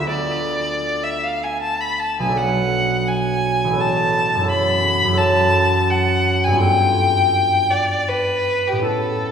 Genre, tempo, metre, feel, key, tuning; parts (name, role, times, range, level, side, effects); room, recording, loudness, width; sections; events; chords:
classical, impressionist duo for violin and harp; 75-86 BPM; 3/4; rubato; A4 = 440 Hz
clear violin; melody; 0.0-9.3 s; G4 to B5; -18 LUFS; left 1 dB
concert harp; accompaniment; 0.0-9.3 s; A1 to D5; -20 LUFS; right 1 dB
wet concert hall reverb, RT60 2.3 s; heard from further back in the room; -16 LUFS; side -7 dB against mid
0.0-9.3 A section
0.1 Dm6; 2.4 Bm7; 3.8 Aadd9; 4.5 F#m7; 6.6 G9